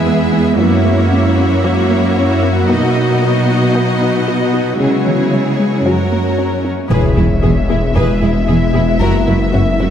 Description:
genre	cinematic, hybrid orchestral and electronic film score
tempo	114 BPM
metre	4/4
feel	straight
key	unclear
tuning	A4 = 440 Hz
part	bright symphonic violin section	second line	0.0-9.9 s	E4 to E5	-21 LUFS	left 3 dB	none
part	rich symphonic viola section	accompaniment	0.0-9.9 s	F#3 to G#4	-19 LUFS	right 1 dB	none
part	bowed-like drone	sustained chords	0.0-9.9 s	F#3 to E5	-18 LUFS	left 1 dB	built-in reverb
part	warm symphonic cello section	bass	0.0-9.9 s	E2 to C#3	-17 LUFS	right 2 dB	none
part	resonant blip pluck	arpeggios	0.1-9.9 s	C#3 to F#4	-22 LUFS	left 1 dB	none
part	warm symphonic violin section	melody	6.9-9.9 s	E5	-24 LUFS	left 4 dB	none
part	dark French horn section	sustained chords	6.9-9.9 s	G#3 to E4	-21 LUFS	left 3 dB	none
part	rich symphonic double bass section	bass	6.9-9.9 s	E1 to F#1	-19 LUFS	right 2 dB	none
part	wide detuned saw bass	bass	6.9-9.9 s	E1 to F#1	-18 LUFS	left 1 dB	chorus
part	impact	sound effects	6.9-9.0 s	none	-20 LUFS	left 1 dB	none
room	moderate scoring stage reverb, RT60 1.8 s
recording	none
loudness	-11 LUFS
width	side -9 dB against mid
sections	0.0-6.9 A section; 6.9-9.9 A section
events	impact 6.9-9.0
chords	0.0 E; 0.6 F#7; 2.7 B; 4.8 C#m; 5.9 F#; 6.9 E; 9.0 F#7

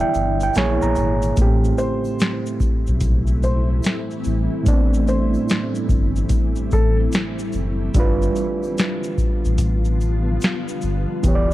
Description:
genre	lo-fi hip hop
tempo	73 BPM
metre	4/4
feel	swing 64% on 16ths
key	A minor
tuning	A4 = 439 Hz
part	overdriven reed electric piano	accompaniment	0.0-11.5 s	A2 to Bb5	-24 LUFS	right 3 dB	low-pass filter
part	granular cloud pad	sustained chords	0.0-11.5 s	D3 to F4	-26 LUFS	equal	built-in reverb, low-pass filter
part	sub bass with octave	bass	0.0-11.5 s	E1 to B1	-21 LUFS	equal	none
part	booming analog drum machine	drums	0.1-11.5 s	hi-hat, kick drum, shaker, snare drum	-20 LUFS	equal	none
part	egg shaker	percussion	0.1-11.5 s	none	-46 LUFS	left 6 dB	none
part	felt-muted upright piano	melody	1.8-7.0 s	A4 to C5	-28 LUFS	left 2 dB	low-pass filter, analog delay
room	little or no reverb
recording	cassette tape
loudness	-17 LUFS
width	side -16 dB against mid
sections	0.0-11.5 A section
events	break 0.0-1.4; reed electric piano fill 0.0-1.4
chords	0.0 Em7; 0.6 Bbm7; 1.4 Am7; 7.9 G7

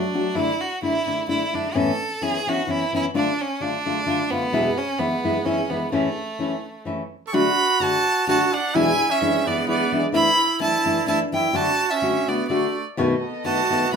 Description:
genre	mexican folk, mariachi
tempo	128 BPM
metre	3/4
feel	swing 54% on 8ths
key	A major, D major from 7.3 s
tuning	A4 = 440 Hz
part	bright violin	melody	0.0-14.0 s	A3 to C#6	-23 LUFS	right 2 dB	none
part	nylon-string guitar	accompaniment	0.0-14.0 s	E2 to F#4	-23 LUFS	left 2 dB	none
part	bright trumpet	second line	7.3-14.0 s	A3 to A4	-24 LUFS	right 5 dB	none
part	dark chamber violin section	sustained chords	13.0-14.0 s	B3 to D#5	-30 LUFS	equal	none
room	wet studio reverb, RT60 0.5 s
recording	band playing live in one room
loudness	-19 LUFS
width	side -6 dB against mid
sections	0.0-7.3 A section; 7.3-14.0 B section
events	none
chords	0.3 Dsus2; 1.7 Aadd9; 3.1 Dm; 4.5 E; 5.9 A; 7.3 D; 8.7 E7; 10.1 Asus4/E; 11.5 D; 13.0 B7

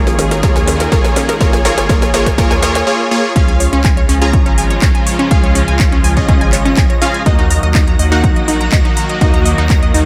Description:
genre	progressive house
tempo	123 BPM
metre	4/4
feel	straight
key	unclear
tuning	A4 = 436 Hz
part	filtered supersaw swell	sustained chords	0.0-10.1 s	Db3 to Ab4	-24 LUFS	equal	sidechain pumping
part	supersaw stab	stabs	0.0-10.0 s	Bb3 to Bb5	-20 LUFS	equal	cassette tape, sidechain pumping, digital delay
part	round analog bass	bass	0.0-10.1 s	Ab1 to Eb2	-19 LUFS	equal	sidechain pumping
part	unison pluck	arpeggios	0.1-10.0 s	Db4 to Bb5	-22 LUFS	equal	cassette tape, sidechain pumping, digital delay
part	house drum kit	drums	0.1-10.0 s	handclaps, hi-hat, snare drum	-22 LUFS	equal	overdrive, sidechain pumping on hats
part	electronic kick drum	drums	0.4-9.8 s	none	-16 LUFS	equal	overdrive
part	twinkling granular texture	texture	4.0-10.1 s	Bb6	-32 LUFS	equal	none
room	light reverb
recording	none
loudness	-12 LUFS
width	mono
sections	0.0-3.4 A section; 3.4-10.1 B section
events	build-up 0.0-3.4; drum fill 0.0-2.9; filter sweep on synth pluck 0.0-3.4; filter sweep on supersaw synth 0.0-3.4; drop 3.4-10.1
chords	0.0 Ab5; 7.3 Ebm

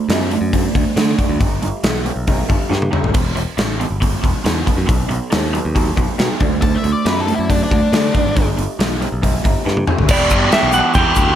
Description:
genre	classic rock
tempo	138 BPM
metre	4/4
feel	straight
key	E minor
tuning	A4 = 440 Hz
part	raw garage guitar	riff	0.0-11.4 s	E2 to G4	-20 LUFS	right 2 dB	overdrive, phaser
part	modern bright picked electric bass	bass	0.1-11.4 s	E1 to D3	-21 LUFS	equal	none
part	gated 80s drum kit	drums	0.1-11.3 s	crash cymbal, hi-hat, kick drum, snare drum, toms	-17 LUFS	equal	none
part	octave-fuzz lead guitar	second line	6.6-8.5 s	D4 to A5	-22 LUFS	left 3 dB	distortion
part	clean lap steel guitar	melody	10.1-11.4 s	D5 to G5	-17 LUFS	right 2 dB	none
part	bright tonewheel organ	sustained chords	10.1-11.4 s	B3 to B4	-28 LUFS	equal	none
part	tube shaker	percussion	10.1-11.3 s	none	-31 LUFS	left 12 dB	none
room	light reverb, small room ambience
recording	none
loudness	-14 LUFS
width	side -10 dB against mid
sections	0.0-10.1 A section; 10.1-11.4 B section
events	drum fill 2.7-3.1, 9.7-10.1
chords	0.0 D; 1.4 G; 3.1 Em; 4.9 B; 6.4 D; 8.4 G; 10.1 Em

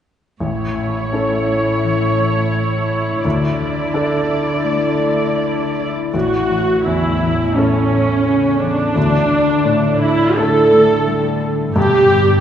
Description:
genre	cinematic, emotional film score for orchestra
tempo	86 BPM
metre	4/4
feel	rubato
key	A mixolydian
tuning	A4 = 440 Hz
part	clear baby grand piano	accompaniment	0.4-12.4 s	A1 to A4	-20 LUFS	equal	none
part	warm studio viola section	accompaniment	0.4-12.4 s	C#4 to D5	-16 LUFS	right 1 dB	none
part	concert harp	arpeggios	0.4-12.4 s	A2 to D5	-22 LUFS	left 6 dB	none
part	warm chamber cello section	bass	0.4-12.4 s	G2 to D3	-23 LUFS	right 2 dB	none
room	wet concert hall reverb, RT60 2.1 s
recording	heard from further back in the room, nothing above 10.3 kHz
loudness	-14 LUFS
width	side -9 dB against mid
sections	0.4-6.1 A section; 6.1-12.4 B section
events	none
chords	0.4 A; 3.2 Dsus2; 6.1 A; 9.0 Dsus2; 11.8 G

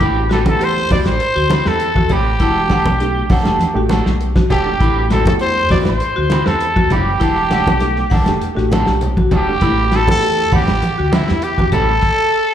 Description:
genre	afrobeat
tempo	100 BPM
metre	4/4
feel	straight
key	A dorian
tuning	A4 = 440 Hz
part	growling trumpet	melody	0.0-12.5 s	E4 to D5	-19 LUFS	left 2 dB	slapback echo, tape echo
part	raspy alto saxophone	second line	0.0-12.5 s	E4 to D5	-25 LUFS	right 7 dB	slapback echo
part	bright reed electric piano	accompaniment	0.0-10.7 s	A3 to G4	-24 LUFS	right 3 dB	fast tremolo, slapback echo
part	vibraphone with medium hard mallets	arpeggios	0.0-11.8 s	E4 to F#5	-24 LUFS	left 5 dB	slapback echo, tape echo
part	electric guitar at the edge of break-up	stabs	0.0-11.9 s	G3 to B4	-23 LUFS	right 3 dB	spring reverb, slapback echo
part	fingered electric bass	bass	0.0-12.0 s	E1 to E2	-19 LUFS	equal	none
part	warm soul drum kit	drums	0.0-12.2 s	crash cymbal, hi-hat, kick drum, snare drum	-19 LUFS	equal	none
part	congas	percussion	0.5-11.9 s	none	-21 LUFS	right 1 dB	slapback echo
room	light reverb, studio reverb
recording	live gig heard through the venue's PA, club reverb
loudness	-13 LUFS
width	side -10 dB against mid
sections	0.0-12.5 A section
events	none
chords	0.0 Am9; 2.4 Em11; 4.8 Am9; 7.2 Em11; 9.6 Am9; 12.0 N.C.

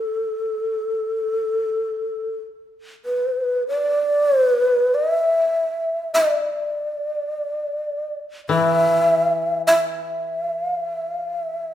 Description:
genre	japanese traditional, Japanese chamber music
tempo	46-52 BPM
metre	4/4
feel	rubato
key	unclear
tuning	A4 = 440 Hz
part	breathy mellow long shakuhachi	melody	0.0-11.7 s	A4 to E5	-19 LUFS	equal	none
part	koto	accompaniment	8.5-11.7 s	E3	-24 LUFS	left 6 dB	none
room	wet recital hall reverb, RT60 1.6 s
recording	recorded in a church or concert hall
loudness	-19 LUFS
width	side -11 dB against mid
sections	0.0-3.7 A section; 3.7-11.7 B section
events	none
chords	none

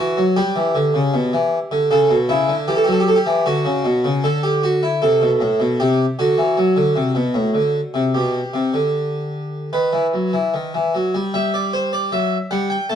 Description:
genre	classical, baroque-style two-part invention for harpsichord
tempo	77 BPM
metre	4/4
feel	straight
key	E minor from 5.0 s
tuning	A4 = 440 Hz
part	harpsichord	solo	0.0-13.0 s	A2 to A5	-16 LUFS	equal	none
room	moderate stone room reverb, RT60 1.1 s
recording	worn, warbling old tape, cassette tape, warbly pitch drift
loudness	-16 LUFS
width	side -9 dB against mid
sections	0.0-5.0 A section; 5.0-11.3 B section; 11.3-13.0 C section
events	none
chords	0.4 Em7; 1.9 A7; 5.0 F#dim; 8.1 Gadd11/B; 9.7 B/D#; 11.3 Em/G

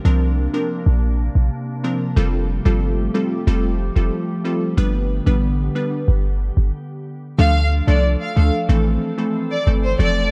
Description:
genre	dancehall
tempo	92 BPM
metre	4/4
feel	straight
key	D minor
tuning	A4 = 438 Hz
part	glassy wavetable pluck	accompaniment	0.0-10.3 s	E3 to B4	-25 LUFS	equal	chorus
part	glassy FM pad	sustained chords	0.0-10.3 s	C3 to A4	-30 LUFS	equal	ensemble chorus, built-in reverb
part	clean 808-style bass	bass	0.1-10.3 s	F1 to D2	-19 LUFS	equal	none
part	warm studio violin section	melody	7.4-10.2 s	C5 to F5	-24 LUFS	equal	none
room	light reverb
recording	dark, warm production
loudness	-19 LUFS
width	mono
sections	0.0-7.4 A section; 7.4-10.3 B section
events	stop 6.7-7.4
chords	0.0 Bbadd9; 2.2 Fadd9; 4.8 G; 7.4 Dm; 8.7 Am

